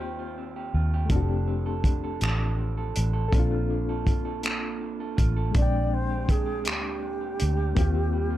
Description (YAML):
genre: slow six-eight R&B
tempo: 54 BPM (dotted quarters)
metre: 6/8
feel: straight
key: unclear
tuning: A4 = 440 Hz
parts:
  - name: reedy alto flute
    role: melody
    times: 0.0-0.4, 5.6-8.4 s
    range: G4 to D5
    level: -32 LUFS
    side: right 3 dB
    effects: none
  - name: electric guitar through a small old amp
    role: second line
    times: 0.0-8.4 s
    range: Bb2 to A4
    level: -35 LUFS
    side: right 8 dB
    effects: none
  - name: bright reed electric piano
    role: accompaniment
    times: 0.0-8.4 s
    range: Ab3 to G5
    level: -33 LUFS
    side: left 7 dB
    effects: fast tremolo
  - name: vintage muted fingered electric bass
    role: bass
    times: 0.0-8.4 s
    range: F1 to Eb2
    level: -26 LUFS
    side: equal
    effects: none
  - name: warm soul drum kit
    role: drums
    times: 1.1-7.9 s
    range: finger snaps, hi-hat, kick drum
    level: -25 LUFS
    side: equal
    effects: none
room: light reverb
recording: dark, warm production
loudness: -24 LUFS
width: side -14 dB against mid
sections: 0.0-8.4 A section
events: none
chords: 0.0 Eb69; 1.1 F6; 3.3 Bbmaj7; 5.5 Bb13; 7.8 Eb69